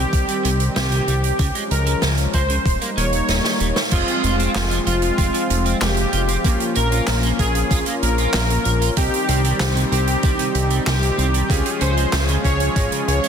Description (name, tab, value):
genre	synthwave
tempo	95 BPM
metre	4/4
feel	straight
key	F minor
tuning	A4 = 440 Hz
part	soft supersaw	melody	0.0-13.3 s	F4 to Db5	-23 LUFS	left 1 dB	digital delay, shimmer reverb
part	warm analog pad	sustained chords	0.0-13.3 s	Eb3 to Eb4	-27 LUFS	left 1 dB	chorus, sidechain pumping, shimmer reverb
part	fat analog bass	bass	0.0-13.2 s	Eb1 to Db2	-20 LUFS	equal	sidechain pumping
part	electronic kick drum	drums	0.1-12.9 s	none	-20 LUFS	equal	overdrive
part	street-band drum kit	drums	0.1-13.3 s	crash cymbal, handclaps, hi-hat, snare drum	-24 LUFS	right 3 dB	none
part	electric guitar at the edge of break-up	riff	0.3-13.3 s	C3 to Bb4	-30 LUFS	right 4 dB	analog chorus, ping-pong delay, shimmer reverb
part	analog synth brass	stabs	3.9-13.3 s	Ab3 to Ab4	-26 LUFS	right 2 dB	chorus, cassette tape, shimmer reverb
room	light reverb, studio ambience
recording	dense, heavily limited modern master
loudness	-16 LUFS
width	side -7 dB against mid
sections	0.0-3.9 A section; 3.9-13.3 B section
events	drum fill 3.3-3.9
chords	0.0 Cm; 1.4 Db; 2.7 Eb; 3.9 Fm; 6.4 Bbm; 9.0 Cm; 11.5 Db